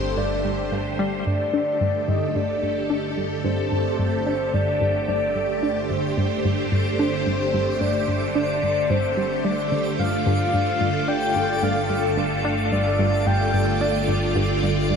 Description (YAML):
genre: ambient, sequencer-driven space music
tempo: 110 BPM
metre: 4/4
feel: straight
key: unclear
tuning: A4 = 441 Hz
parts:
  - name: soft octave-layered synth lead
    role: melody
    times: 0.0-14.2 s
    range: C5 to G5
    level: -25 LUFS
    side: left 1 dB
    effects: chorus, analog delay
  - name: phased string machine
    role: sustained chords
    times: 0.0-15.0 s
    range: D3 to D5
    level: -25 LUFS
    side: right 1 dB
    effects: ensemble chorus, phaser
  - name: analog pluck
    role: riff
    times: 0.0-15.0 s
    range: G2 to D4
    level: -25 LUFS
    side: equal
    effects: chorus, phaser, analog delay
  - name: analog drone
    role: bass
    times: 0.0-15.0 s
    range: G1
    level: -31 LUFS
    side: equal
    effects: chorus
  - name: twinkling granular texture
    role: texture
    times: 2.7-15.0 s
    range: D5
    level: -36 LUFS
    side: equal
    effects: built-in reverb
room: wet huge ambient reverb, RT60 8.2 s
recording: none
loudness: -20 LUFS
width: side -6 dB against mid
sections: 0.0-1.3 A section; 1.3-15.0 B section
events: filter sweep on synth arpeggio sound 0.0-1.3, 1.3-15.0; fade-in on synth drone 1.3-15.0; fade-in on synth texture 1.3-15.0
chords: 0.0 Gsus2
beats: 0.17 0.72 | 1.26 1.81 2.36 2.90 | 3.45 3.99 4.54 5.08 | 5.63 6.17 6.72 7.26 | 7.81 8.36 8.90 9.45 | 9.99 10.54 11.08 11.63 | 12.17 12.72 13.27 13.81 | 14.36 14.90